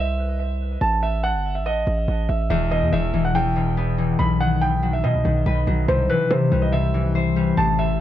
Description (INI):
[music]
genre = hip hop, drill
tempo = 142 BPM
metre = 4/4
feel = half-time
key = unclear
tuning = A4 = 440 Hz
[part]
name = dark concert grand piano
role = melody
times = 0.0-8.0 s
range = B4 to B5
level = -24 LUFS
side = right 2 dB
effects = low-pass filter, dub echo
[part]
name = hard-hitting 808-style bass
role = bass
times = 0.0-8.0 s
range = E1 to C3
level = -23 LUFS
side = right 1 dB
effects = none
[part]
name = concert harp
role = accompaniment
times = 2.5-8.0 s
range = E2 to C5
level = -21 LUFS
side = left 4 dB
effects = low-pass filter, dub echo
[sound]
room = light reverb, studio reverb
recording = echo-heavy mix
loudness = -18 LUFS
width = side -12 dB against mid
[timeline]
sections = 0.0-8.0 A section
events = none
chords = 0.0 C; 0.8 D#(b5, no3); 2.5 Em; 4.2 B; 5.9 C